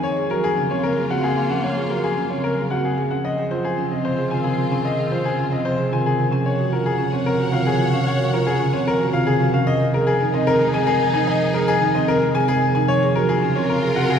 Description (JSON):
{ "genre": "classical, minimalist pattern music", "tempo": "112 BPM", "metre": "3/4", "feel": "straight", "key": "unclear", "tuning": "A4 = 440 Hz", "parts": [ { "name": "warm grand piano", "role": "melody", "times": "0.0-14.2 s", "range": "Ab4 to Ab5", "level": "-21 LUFS", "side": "left 3 dB", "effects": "none" }, { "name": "concert harp", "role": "accompaniment", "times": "0.0-14.2 s", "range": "C3 to C4", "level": "-22 LUFS", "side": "right 2 dB", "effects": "none" }, { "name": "clear studio string section", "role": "sustained chords", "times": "0.0-14.2 s", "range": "Bb3 to Gb5", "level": "-30 LUFS", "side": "left 1 dB", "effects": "none" }, { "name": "marimba with soft mallets", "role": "arpeggios", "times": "0.0-14.1 s", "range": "C4 to Bb4", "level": "-24 LUFS", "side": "right 3 dB", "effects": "none" } ], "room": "wet church reverb, RT60 2.7 s", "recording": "heard from further back in the room", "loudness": "-18 LUFS", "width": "side -7 dB against mid", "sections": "0.0-14.2 A section", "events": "none", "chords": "0.0 Gbmaj9; 3.2 Dbmaj7; 6.5 Ebm11; 9.7 Fm7; 12.9 Gbmaj9" }